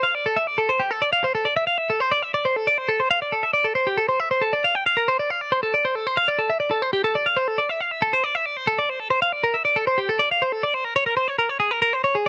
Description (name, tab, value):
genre	rock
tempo	275 BPM (eighths)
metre	7/8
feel	straight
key	unclear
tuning	A4 = 440 Hz
part	twelve-string electric guitar	solo	0.0-12.3 s	G4 to G5	-22 LUFS	equal	none
room	light reverb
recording	none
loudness	-22 LUFS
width	mono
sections	0.0-10.7 A section; 10.7-12.3 B section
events	none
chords	none